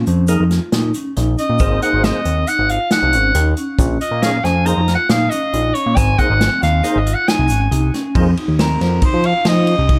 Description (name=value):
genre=progressive instrumental, band music in an uneven meter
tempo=137 BPM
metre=5/4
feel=straight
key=Bb minor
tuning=A4 = 440 Hz
part: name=fat analog bass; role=bass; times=0.0-10.0 s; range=Ab1 to F3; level=-19 LUFS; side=equal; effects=none
part: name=vibraphone with medium hard mallets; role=arpeggios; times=0.1-10.0 s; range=C4 to F4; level=-25 LUFS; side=equal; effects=none
part: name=unplugged drum kit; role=drums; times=0.1-10.0 s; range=hi-hat, kick drum, ride cymbal, snare drum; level=-22 LUFS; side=equal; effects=none
part: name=tube shaker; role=percussion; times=0.1-7.7 s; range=none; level=-39 LUFS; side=equal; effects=none
part: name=percussive tonewheel organ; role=accompaniment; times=0.3-8.3 s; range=Bb3 to Db5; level=-25 LUFS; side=equal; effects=overdrive, chorus vibrato, slow rotary speaker
part: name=breathy soprano saxophone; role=melody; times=1.4-10.0 s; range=Bb4 to Bb5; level=-21 LUFS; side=equal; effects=tape echo
room=light reverb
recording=none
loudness=-16 LUFS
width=mono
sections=0.0-8.2 A section; 8.2-10.0 B section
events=soprano saxophone solo 0.0-8.2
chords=0.0 Bbm; 1.6 Abadd9; 3.8 Bbm; 6.0 Abadd9; 8.2 F7sus4